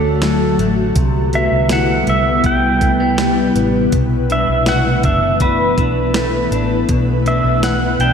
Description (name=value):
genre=dream pop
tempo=81 BPM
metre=4/4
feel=straight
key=unclear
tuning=A4 = 440 Hz
part: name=pedal steel guitar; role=melody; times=0.0-8.1 s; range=A4 to G5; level=-18 LUFS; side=right 1 dB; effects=ping-pong delay
part: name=ethereal airy pad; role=sustained chords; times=0.0-8.1 s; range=C3 to B4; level=-18 LUFS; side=left 1 dB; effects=ensemble chorus, built-in reverb
part: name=semi-hollow electric guitar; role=arpeggios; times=0.0-8.1 s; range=B2 to F#4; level=-21 LUFS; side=left 4 dB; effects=analog chorus, ping-pong delay
part: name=vintage muted fingered electric bass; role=bass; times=0.0-8.1 s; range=F#1 to D2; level=-20 LUFS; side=right 1 dB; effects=none
part: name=clean 12-bit digital drum machine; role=drums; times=0.2-8.1 s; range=hi-hat, kick drum, snare drum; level=-21 LUFS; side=equal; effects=none
room=wet lush hall reverb, RT60 2.7 s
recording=dreamy mix soaked in reverb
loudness=-13 LUFS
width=side -7 dB against mid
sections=0.0-8.1 A section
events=none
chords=0.0 Dmaj7; 1.0 Cmaj7; 3.9 Bm11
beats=0.22 | 0.96 1.70 2.44 3.19 | 3.93 4.67 5.41 6.15 | 6.89 7.63